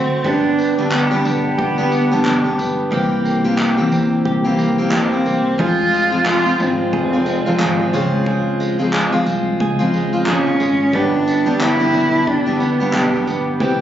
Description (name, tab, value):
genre	acoustic pop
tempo	90 BPM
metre	4/4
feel	swing 60% on 16ths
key	unclear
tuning	A4 = 439 Hz
part	dark cello	melody	0.0-13.3 s	B3 to F4	-19 LUFS	right 2 dB	plate reverb, tape echo
part	picked steel-string acoustic guitar	accompaniment	0.0-13.8 s	F2 to G4	-18 LUFS	left 2 dB	none
part	direct-recorded clean electric guitar	arpeggios	0.0-13.8 s	E3 to Ab4	-24 LUFS	right 5 dB	none
part	upright bass	bass	0.0-13.8 s	F1 to E2	-25 LUFS	right 1 dB	none
part	cloth-damped thuddy drum kit	drums	0.2-13.8 s	handclaps, kick drum, tambourine	-24 LUFS	equal	none
room	light reverb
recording	recorded on a phone in the room, club reverb, compression, nothing above 7.6 kHz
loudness	-14 LUFS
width	side -10 dB against mid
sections	0.0-13.8 A section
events	none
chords	0.2 G; 2.9 C7; 5.6 Fm; 7.9 Dbmaj7; 10.9 G